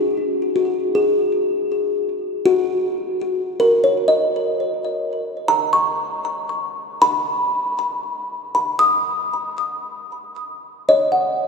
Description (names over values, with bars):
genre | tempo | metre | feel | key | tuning
ambient | 79 BPM | 4/4 | straight | unclear | A4 = 440 Hz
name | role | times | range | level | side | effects
kalimba | solo | 0.0-11.5 s | D#4 to D#6 | -18 LUFS | left 1 dB | ping-pong delay
room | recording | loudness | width
wet cathedral reverb, RT60 5.6 s | in a vast, echoing space | -17 LUFS | side -5 dB against mid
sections
0.0-10.5 A section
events
none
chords
0.0 B; 10.5 Esus2 (rootless)